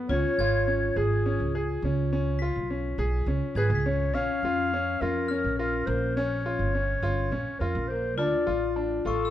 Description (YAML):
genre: contemporary instrumental, chamber music in an uneven meter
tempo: 208 BPM (eighths)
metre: 7/8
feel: straight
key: unclear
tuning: A4 = 440 Hz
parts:
  - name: clear grand piano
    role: arpeggios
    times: 0.0-9.3 s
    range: A#3 to G#4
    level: -31 LUFS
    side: left 1 dB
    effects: none
  - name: warm clarinet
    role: melody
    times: 0.1-9.3 s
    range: G#4 to E#5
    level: -30 LUFS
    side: equal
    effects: none
  - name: vibraphone with medium hard mallets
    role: second line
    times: 0.1-9.3 s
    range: C#4 to E#4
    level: -33 LUFS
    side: left 7 dB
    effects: none
  - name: upright bass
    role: bass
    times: 0.1-9.3 s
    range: G1 to E#2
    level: -29 LUFS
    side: right 2 dB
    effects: none
  - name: glockenspiel with brass mallets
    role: texture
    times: 0.4-9.3 s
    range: C#6 to B6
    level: -38 LUFS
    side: left 3 dB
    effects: none
room: moderate recital hall reverb, RT60 1.4 s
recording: dark, warm production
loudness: -24 LUFS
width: side -12 dB against mid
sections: 0.1-9.3 A section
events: none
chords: 0.1 C#; 4.1 A#m; 8.2 Dm